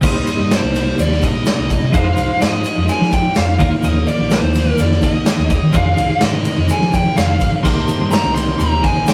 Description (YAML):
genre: psychedelic rock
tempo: 126 BPM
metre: 4/4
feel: straight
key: F minor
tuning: A4 = 441 Hz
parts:
  - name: twelve-string electric guitar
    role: riff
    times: 0.0-9.1 s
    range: F2 to C5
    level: -21 LUFS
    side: equal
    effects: tremolo
  - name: hollow-body short-scale picked electric bass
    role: bass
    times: 0.0-9.0 s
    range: Bb1 to F3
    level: -21 LUFS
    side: equal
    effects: none
  - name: raw garage drum kit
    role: drums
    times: 0.0-9.1 s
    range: crash cymbal, kick drum, ride cymbal, snare drum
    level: -21 LUFS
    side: equal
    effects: none
  - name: egg shaker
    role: percussion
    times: 0.0-9.1 s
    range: none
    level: -41 LUFS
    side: equal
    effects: none
  - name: fuzz lead guitar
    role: melody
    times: 0.1-9.1 s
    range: C5 to C6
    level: -23 LUFS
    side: equal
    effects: distortion
  - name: overdriven combo organ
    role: sustained chords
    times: 7.7-9.1 s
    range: Bb3 to G4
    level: -31 LUFS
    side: equal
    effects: none
room: moderate studio reverb, RT60 0.5 s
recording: rough rehearsal-room recording, warm saturation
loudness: -16 LUFS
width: mono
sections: 0.0-9.1 A section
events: none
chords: 0.0 Cm7; 1.9 Fm7; 3.6 Ebsus2; 5.7 Fm7; 7.7 Cm7